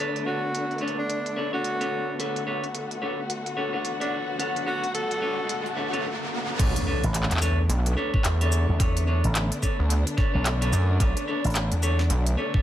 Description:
glitch hop; 109 BPM; 4/4; swing 60% on 16ths; B minor; A4 = 438 Hz
dark studio string section; sustained chords; 0.0-12.6 s; D3 to F#4; -32 LUFS; left 2 dB; sidechain pumping
clean electric guitar; stabs; 0.0-12.6 s; D4 to C#5; -30 LUFS; equal; sidechain pumping, analog delay
pop drum kit; drums; 0.2-12.4 s; crash cymbal, handclaps, hi-hat, shaker, snare drum; -32 LUFS; equal; low-pass filter on hats, studio reverb, low-pass filter on cymbals, low-pass filter on snare, low-pass filter on perc, analog delay
breathy tenor saxophone; melody; 0.3-5.7 s; D4 to A4; -31 LUFS; right 1 dB; analog delay
riser and impact; sound effects; 3.9-8.8 s; -33 LUFS; right 1 dB
gritty driven synth bass; bass; 6.6-12.4 s; B1 to F#2; -22 LUFS; equal; tube saturation
electronic kick drum; drums; 6.6-12.6 s; -24 LUFS; equal; studio reverb
slap bass with an envelope filter; bass; 7.0-12.1 s; A1 to E2; -23 LUFS; equal
light reverb; echo-heavy mix; -23 LUFS; side -12 dB against mid
0.0-6.6 A section; 6.6-12.6 B section
filter sweep on string section 0.0-6.6; riser 3.9-6.6; drop 6.6-12.6; impact 6.6-8.8
0.0 Bm9
0.54 1.09 1.64 | 2.19 2.74 3.29 3.85 | 4.40 4.95 5.50 6.05 | 6.60 7.15 7.70 8.25 | 8.80 9.35 9.90 10.45 | 11.00 11.55 12.10

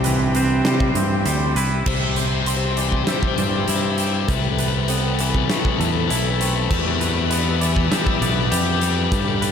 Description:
post-rock; 99 BPM; 4/4; straight; C major; A4 = 440 Hz
dark cello; melody; 0.0-1.3 s; C4; -28 LUFS; right 2 dB
warm studio string section; sustained chords; 0.0-9.5 s; C4 to E6; -31 LUFS; left 1 dB
twangy electric guitar; arpeggios; 0.0-9.5 s; E2 to G4; -26 LUFS; left 2 dB; ping-pong delay
twangy electric guitar; arpeggios; 0.0-9.5 s; C4 to E5; -31 LUFS; right 3 dB; analog chorus, ping-pong delay
growling fingered electric bass; bass; 0.0-9.5 s; B1 to C3; -22 LUFS; equal; overdrive
huge arena drum kit; drums; 0.0-9.5 s; crash cymbal, hi-hat, kick drum, snare drum; -23 LUFS; right 1 dB
crunchy overdriven guitar; riff; 1.9-9.5 s; G4 to C5; -24 LUFS; left 12 dB
moderate huge ambient reverb, RT60 8.3 s; dreamy mix soaked in reverb; -17 LUFS; side -7 dB against mid
0.0-1.9 A section; 1.9-9.5 B section
build-up 1.9-9.5
0.0 C; 4.3 Amadd9/C; 6.7 Em
0.05 0.66 1.26 | 1.87 2.47 3.08 3.69 | 4.29 4.89 5.50 6.10 | 6.71 7.31 7.91 8.52 | 9.12

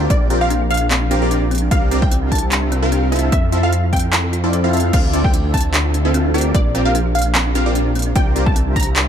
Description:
future bass; 149 BPM; 4/4; swing 54% on 16ths, half-time; A4 = 440 Hz
thumb-piano-like synth pluck; arpeggios; 0.0-9.0 s; C4 to E5; -26 LUFS; left 1 dB; chorus, sidechain pumping, digital delay
supersaw stab; riff; 0.0-9.1 s; C4 to F5; -21 LUFS; equal; sidechain pumping, digital delay
wide detuned saw bass; bass; 0.0-9.1 s; Bb1 to F2; -18 LUFS; equal; chorus, sidechain pumping
wide unison pluck; melody; 0.1-8.9 s; D5 to Bb5; -24 LUFS; equal; sidechain pumping, dub echo
big-room dance drum kit; drums; 0.1-9.0 s; crash cymbal, handclaps, hi-hat; -22 LUFS; right 1 dB
electronic kick drum; drums; 0.1-8.8 s; -17 LUFS; equal
light reverb, digital ambience; dark, warm production; -14 LUFS; side -8 dB against mid
0.0-9.1 A section
kick drops out 4.5-4.9
0.1 Bb69; 1.7 C9sus4; 3.3 Fmaj7; 4.9 Dm9; 6.5 Bb69; 8.2 C9sus4
| 0.10 0.50 0.91 1.31 | 1.71 2.12 2.52 2.92 | 3.32 3.73 4.13 4.53 | 4.93 5.34 5.74 6.14 | 6.54 6.95 7.35 7.75 | 8.15 8.56 8.96

